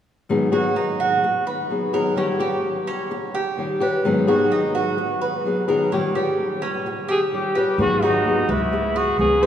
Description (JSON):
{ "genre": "latin", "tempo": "128 BPM", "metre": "4/4", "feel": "straight", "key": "G# minor", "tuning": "A4 = 435 Hz", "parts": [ { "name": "flamenco guitar", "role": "accompaniment", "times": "0.3-9.5 s", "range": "G#2 to G#4", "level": "-21 LUFS", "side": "left 2 dB", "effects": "none" }, { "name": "Cuban tres", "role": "arpeggios", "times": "0.5-9.5 s", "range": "C#4 to B4", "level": "-23 LUFS", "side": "right 3 dB", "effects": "none" }, { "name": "warm trumpet", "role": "melody", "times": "7.1-9.5 s", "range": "D#4 to G#4", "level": "-22 LUFS", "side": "left 1 dB", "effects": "none" }, { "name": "upright bass", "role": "bass", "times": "7.8-9.5 s", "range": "G#1 to C#2", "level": "-25 LUFS", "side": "right 1 dB", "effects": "none" } ], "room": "wet cathedral reverb, RT60 5.4 s", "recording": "recorded in a church or concert hall", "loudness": "-19 LUFS", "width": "side -9 dB against mid", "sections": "0.3-7.8 A section; 7.8-9.5 B section", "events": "none", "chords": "0.3 G#m7; 2.2 D#7; 4.0 G#m9; 5.9 D#7; 7.8 G#m7; 8.7 C#m7", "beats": "| 0.29 0.76 1.23 1.70 | 2.17 2.64 3.10 3.57 | 4.04 4.51 4.98 5.45 | 5.92 6.38 6.85 7.32 | 7.79 8.25 8.72 9.19" }